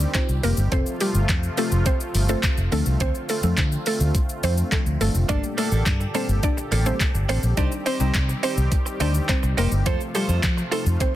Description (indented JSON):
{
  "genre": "dance-pop",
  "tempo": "105 BPM",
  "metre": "4/4",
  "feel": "straight",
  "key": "G minor",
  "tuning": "A4 = 440 Hz",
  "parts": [
    { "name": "warm analog pad", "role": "sustained chords", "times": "0.0-11.2 s", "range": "Bb2 to G4", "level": "-32 LUFS", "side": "equal", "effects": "chorus, sidechain pumping" },
    { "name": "vintage muted fingered electric bass", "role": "bass", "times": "0.0-11.0 s", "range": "F1 to F3", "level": "-22 LUFS", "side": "equal", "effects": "sidechain pumping" },
    { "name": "smooth R&B drum kit", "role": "drums", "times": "0.0-11.1 s", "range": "handclaps, hi-hat, kick drum, shaker", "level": "-24 LUFS", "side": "equal", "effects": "none" },
    { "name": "mallet-like synth pluck", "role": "melody", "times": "0.1-11.1 s", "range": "G3 to D5", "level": "-28 LUFS", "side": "equal", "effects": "chorus, sidechain pumping, ping-pong delay" },
    { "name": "mallet-like synth pluck", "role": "accompaniment", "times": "0.1-11.2 s", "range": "F3 to C5", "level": "-32 LUFS", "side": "left 1 dB", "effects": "chorus, phaser, sidechain pumping" },
    { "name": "direct-recorded clean electric guitar", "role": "riff", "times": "5.3-11.0 s", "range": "Bb3 to C5", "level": "-31 LUFS", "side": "right 6 dB", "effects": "lush chorus" }
  ],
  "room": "little or no reverb",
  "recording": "dense, heavily limited modern master",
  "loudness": "-20 LUFS",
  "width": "side -14 dB against mid",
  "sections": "0.0-11.2 A section",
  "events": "none",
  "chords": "0.0 Cm; 0.7 F; 2.7 Dm7; 5.3 Gmadd9; 7.6 Cm; 9.9 F"
}